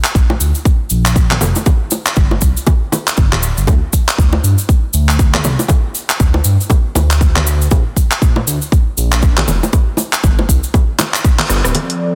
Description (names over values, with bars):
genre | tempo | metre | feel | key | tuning
afro house | 119 BPM | 4/4 | swing 59% on 16ths | unclear | A4 = 440 Hz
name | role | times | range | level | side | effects
house drum kit | drums | 0.0-12.0 s | handclaps, hi-hat, rim click | -21 LUFS | equal | none
cabasa | percussion | 0.0-11.7 s | none | -24 LUFS | equal | none
smooth synth bass | bass | 0.1-11.7 s | D1 to G2 | -17 LUFS | equal | tube saturation, sidechain pumping
electronic kick drum | drums | 0.1-11.4 s | none | -14 LUFS | equal | none
bongos | percussion | 0.3-11.9 s | none | -23 LUFS | equal | none
warm analog pad | sustained chords | 11.7-12.2 s | F3 to D5 | -20 LUFS | equal | chorus, sidechain pumping
room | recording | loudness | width
little or no reverb | dense, heavily limited modern master | -13 LUFS | mono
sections
0.0-11.7 A section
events
band accent 11.4; drum fill 11.5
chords
0.0 N.C.; 1.7 G5; 3.7 N.C.; 9.7 G5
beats
0.15 0.66 1.16 | 1.67 2.17 2.67 3.18 | 3.68 4.19 4.69 5.19 | 5.70 6.20 6.71 7.21 | 7.71 8.22 8.72 9.23 | 9.73 10.24 10.74 11.24 | 11.75